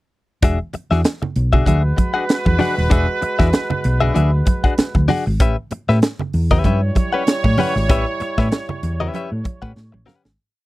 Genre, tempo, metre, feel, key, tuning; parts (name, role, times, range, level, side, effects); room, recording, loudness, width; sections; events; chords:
funk; 96 BPM; 4/4; swing 56% on 16ths; E mixolydian; A4 = 443 Hz
direct-recorded clean electric guitar; accompaniment; 0.4-10.3 s; C#4 to F#5; -21 LUFS; left 5 dB
hollow-body short-scale fingered electric bass; bass; 0.4-10.4 s; D#1 to A2; -18 LUFS; equal
crisp fusion drum kit; drums; 0.4-10.4 s; hi-hat, kick drum, snare drum; -17 LUFS; equal
congas; percussion; 0.4-10.2 s; -26 LUFS; right 4 dB
clear horn section; second line; 1.7-10.0 s; G3 to C#5; -24 LUFS; right 2 dB
little or no reverb; dry, close 1970s-style studio recording; -15 LUFS; side -18 dB against mid
0.4-10.4 groove
fade-out 7.9-10.4; drum fill 9.8-10.4
0.4 E9; 5.4 A9